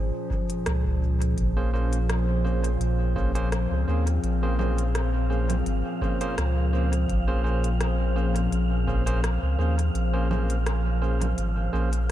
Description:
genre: ambient dub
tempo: 84 BPM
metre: 4/4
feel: swing 54% on 16ths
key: Bb minor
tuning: A4 = 440 Hz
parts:
  - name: warbly tape-like pad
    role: sustained chords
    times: 0.0-12.1 s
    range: Bb2 to C5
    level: -29 LUFS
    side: left 1 dB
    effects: chorus, built-in reverb
  - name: warm sub bass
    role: bass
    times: 0.0-12.1 s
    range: Ab1 to Eb2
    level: -24 LUFS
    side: equal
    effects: none
  - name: electronic kick drum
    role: drums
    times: 0.3-9.0 s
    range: none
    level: -31 LUFS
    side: equal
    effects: none
  - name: organic electronic drum kit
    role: drums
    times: 0.5-12.1 s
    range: congas, hi-hat, rim click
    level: -36 LUFS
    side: right 1 dB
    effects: dub echo
  - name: wind-like tuned noise texture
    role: texture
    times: 2.8-12.1 s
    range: F5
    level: -39 LUFS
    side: right 2 dB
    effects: built-in reverb
  - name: barky tine electric piano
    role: stabs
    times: 1.6-11.9 s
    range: Bb3 to C5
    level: -32 LUFS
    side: right 2 dB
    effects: dub echo
room: light reverb, digital ambience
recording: none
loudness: -22 LUFS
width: side -12 dB against mid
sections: 0.0-12.1 A section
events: kick drops out 9.9-12.1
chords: 0.0 Bbm9

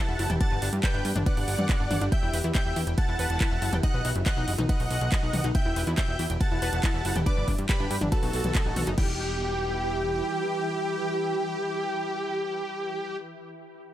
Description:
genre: uplifting trance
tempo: 140 BPM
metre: 4/4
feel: straight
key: E minor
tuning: A4 = 439 Hz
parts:
  - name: dense compressed supersaw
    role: melody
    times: 0.0-13.2 s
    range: F#4 to A5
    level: -31 LUFS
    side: equal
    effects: cassette tape, sidechain pumping, dub echo
  - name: plucky unison lead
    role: second line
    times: 0.0-13.2 s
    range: G5 to A6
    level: -38 LUFS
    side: equal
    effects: sidechain pumping, dub echo
  - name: shimmering ambient pad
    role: sustained chords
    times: 0.0-13.2 s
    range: E3 to B4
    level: -37 LUFS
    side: equal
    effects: chorus, built-in reverb, vintage 12-bit sampler grit, sidechain pumping
  - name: analog pluck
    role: arpeggios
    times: 0.0-9.2 s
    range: D4 to G5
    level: -36 LUFS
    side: left 3 dB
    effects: chorus, sidechain pumping, dub echo
  - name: plucky analog bass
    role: bass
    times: 0.1-10.2 s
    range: E1 to G2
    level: -29 LUFS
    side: equal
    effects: sidechain pumping
  - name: house drum kit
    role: drums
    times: 0.2-9.1 s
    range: crash cymbal, handclaps, hi-hat, ride cymbal, toms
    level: -33 LUFS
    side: equal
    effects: none
  - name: electronic kick drum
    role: drums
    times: 0.4-9.1 s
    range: none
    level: -26 LUFS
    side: equal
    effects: none
room: light reverb, digital ambience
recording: none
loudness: -24 LUFS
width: side -12 dB against mid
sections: 0.0-9.0 A section; 9.0-12.4 B section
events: drop 0.0-9.0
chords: 0.4 G; 2.1 Em; 3.8 B; 5.5 Em; 7.3 G; 8.1 B; 9.0 Em

